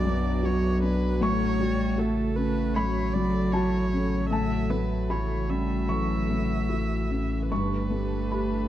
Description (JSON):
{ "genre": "neoclassical piano and strings", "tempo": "77 BPM", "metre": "4/4", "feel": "rubato", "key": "unclear", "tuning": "A4 = 440 Hz", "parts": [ { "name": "warm cello", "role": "second line", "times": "0.0-8.7 s", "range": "E3 to A3", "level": "-30 LUFS", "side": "right 5 dB", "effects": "none" }, { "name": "felt-muted upright piano", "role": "accompaniment", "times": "0.0-8.7 s", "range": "B1 to D6", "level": "-28 LUFS", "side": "left 3 dB", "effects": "none" }, { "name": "rich viola", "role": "accompaniment", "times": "0.0-8.7 s", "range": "A4 to E5", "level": "-35 LUFS", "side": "right 2 dB", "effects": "none" }, { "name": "hollow soft pad", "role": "sustained chords", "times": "0.0-8.7 s", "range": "C#3 to B4", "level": "-37 LUFS", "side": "left 1 dB", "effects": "chorus" }, { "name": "pure sine sub bass", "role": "bass", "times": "0.0-8.7 s", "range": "G1 to B1", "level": "-30 LUFS", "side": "equal", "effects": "none" } ], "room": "moderate scoring stage reverb, RT60 1.6 s", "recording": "dark, warm production", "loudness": "-24 LUFS", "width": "side -12 dB against mid", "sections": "0.0-8.7 A section", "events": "none", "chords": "0.0 Bm; 1.2 F#m/A; 4.3 A6; 7.5 Gadd9", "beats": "0.44 | 1.22 1.99 2.77 3.55 | 4.33 5.11 5.90 6.70 | 7.50 8.31" }